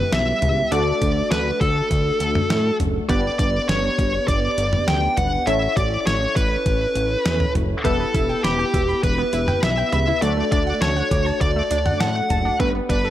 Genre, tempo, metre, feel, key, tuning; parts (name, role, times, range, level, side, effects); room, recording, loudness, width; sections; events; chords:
synth-pop; 101 BPM; 4/4; straight; A4 = 439 Hz
high-gain lead guitar; melody; 0.0-13.1 s; G4 to G5; -22 LUFS; equal; distortion, analog delay
funky polysynth comp; accompaniment; 0.0-13.1 s; G3 to C#5; -26 LUFS; left 1 dB; chorus
fat analog bass; bass; 0.0-13.1 s; E1 to A2; -24 LUFS; equal
detuned 8-bit digital drum machine; drums; 0.1-13.0 s; cowbell, hi-hat, kick drum, snare drum, toms; -24 LUFS; equal
analog pluck; arpeggios; 7.8-13.1 s; F#3 to E6; -29 LUFS; right 3 dB; chorus, analog delay
light reverb; -18 LUFS; side -12 dB against mid
0.0-13.1 A section
0.0 Em; 0.7 D; 3.1 G; 5.5 Aadd9; 7.8 Em; 10.2 D; 12.6 Gadd9